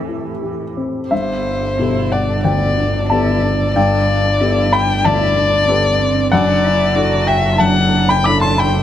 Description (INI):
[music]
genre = neoclassical piano and strings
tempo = 85-95 BPM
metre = 4/4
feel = rubato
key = G major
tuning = A4 = 443 Hz
[part]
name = dark cello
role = second line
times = 0.0-8.8 s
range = E3 to F#4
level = -25 LUFS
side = right 8 dB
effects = none
[part]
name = warm baby grand piano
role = accompaniment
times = 0.0-8.8 s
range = D2 to D6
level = -18 LUFS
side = left 2 dB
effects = none
[part]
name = granular cloud pad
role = sustained chords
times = 0.0-8.8 s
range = D4 to E5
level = -28 LUFS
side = right 2 dB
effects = built-in reverb
[part]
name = warm violin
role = melody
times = 1.1-8.8 s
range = C5 to B5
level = -17 LUFS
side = left 3 dB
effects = none
[part]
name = warm double bass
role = bass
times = 1.1-8.8 s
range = F#1 to G1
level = -19 LUFS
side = right 1 dB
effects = none
[sound]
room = light reverb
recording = none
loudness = -13 LUFS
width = side -10 dB against mid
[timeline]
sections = 0.0-1.1 A section; 1.1-8.8 A section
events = none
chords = 0.0 Am7; 1.1 Gadd9; 6.3 Dadd9/F#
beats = 0.42 | 1.12 1.79 2.45 3.11 | 3.76 4.41 5.05 5.68 | 6.32 6.95 7.59 8.25